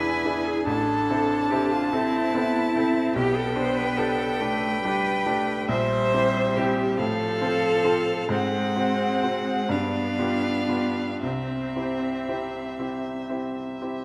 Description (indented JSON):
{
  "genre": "classical, slow romantic movement for piano quartet",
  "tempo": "37-50 BPM (dotted quarters)",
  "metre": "6/8",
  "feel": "rubato",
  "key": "C major",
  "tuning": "A4 = 440 Hz",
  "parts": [
    { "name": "rich violin", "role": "melody", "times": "0.0-14.0 s", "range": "E5 to A5", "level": "-33 LUFS", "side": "equal", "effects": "none" },
    { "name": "rich cello", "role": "second line", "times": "0.0-12.8 s", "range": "C4 to C5", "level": "-29 LUFS", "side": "equal", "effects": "none" },
    { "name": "bright baby grand piano", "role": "accompaniment", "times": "0.0-14.0 s", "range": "A1 to A4", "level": "-30 LUFS", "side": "equal", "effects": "none" },
    { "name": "clear viola", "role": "accompaniment", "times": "0.0-13.6 s", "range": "F3 to E4", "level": "-31 LUFS", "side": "equal", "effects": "none" }
  ],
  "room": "wet concert hall reverb, RT60 2.1 s",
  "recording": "none",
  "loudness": "-25 LUFS",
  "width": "mono",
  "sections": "0.0-14.0 A section",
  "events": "none",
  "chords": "0.0 E7; 0.7 Am; 3.1 G/B; 5.7 C7/Bb; 7.0 F/A; 8.3 Ab7; 9.7 G7; 11.2 C",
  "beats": "| 0.68 1.93 | 3.15 4.41 | 5.70 6.99 | 8.30 9.70 | 11.22 12.80"
}